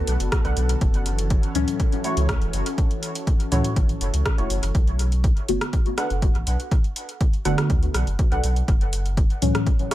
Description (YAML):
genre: dub techno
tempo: 122 BPM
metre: 4/4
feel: straight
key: B minor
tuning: A4 = 441 Hz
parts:
  - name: airy breathy pad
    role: sustained chords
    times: 0.0-4.7 s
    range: D3 to A4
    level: -32 LUFS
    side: equal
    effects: chorus, phaser, sidechain pumping
  - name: warm sub bass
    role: bass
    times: 0.1-9.5 s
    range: E1 to D2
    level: -23 LUFS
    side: equal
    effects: sidechain pumping
  - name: deep house drum kit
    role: drums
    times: 0.1-9.9 s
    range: hi-hat, rim click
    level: -30 LUFS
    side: equal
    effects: dub echo
  - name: electronic kick drum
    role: drums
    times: 0.3-9.8 s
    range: none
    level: -20 LUFS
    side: equal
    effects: none
  - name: warbly dusty pluck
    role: riff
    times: 0.4-9.9 s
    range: A3 to F#5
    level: -31 LUFS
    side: right 1 dB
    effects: lush chorus, sidechain pumping, dub echo
  - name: deep mellow chord stab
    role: stabs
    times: 1.6-9.7 s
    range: A2 to F#4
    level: -26 LUFS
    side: left 2 dB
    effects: chorus, phaser, sidechain pumping, dub echo
room: little or no reverb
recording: echo-heavy mix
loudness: -20 LUFS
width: side -14 dB against mid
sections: 0.0-4.7 A section; 4.7-9.9 A section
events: none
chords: 0.0 Bm7; 0.8 F#m7; 4.7 Bm7; 8.7 F#m7